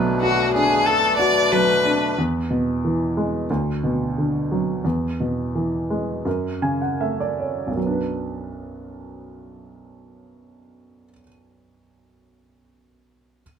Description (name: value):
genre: acoustic folk-pop ballad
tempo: 76-92 BPM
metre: 4/4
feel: straight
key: B dorian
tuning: A4 = 440 Hz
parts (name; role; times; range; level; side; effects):
- picked steel-string acoustic guitar; melody; 0.0-1.5 s; B4; -35 LUFS; right 4 dB; none
- warm baby grand piano; accompaniment; 0.0-13.4 s; B1 to G#5; -22 LUFS; right 1 dB; none
- hand-pumped harmonium; sustained chords; 0.0-2.1 s; B2 to B4; -24 LUFS; left 1 dB; none
- clear violin; second line; 0.2-2.2 s; F#4 to D5; -18 LUFS; left 3 dB; none
room: moderate studio reverb, RT60 0.6 s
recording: none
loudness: -19 LUFS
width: side -8 dB against mid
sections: 0.0-2.2 A section; 2.2-7.8 B section; 7.8-10.9 C section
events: slowing down 2.2-7.8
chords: 0.0 Bm7; 2.2 E; 3.5 Bm/D; 4.8 E; 6.3 F#m; 7.8 Bm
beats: 0.22 0.87 1.52 | 2.17 2.83 3.49 4.16 | 4.84 5.54 6.26 7.00 | 7.77 8.56 9.34 10.13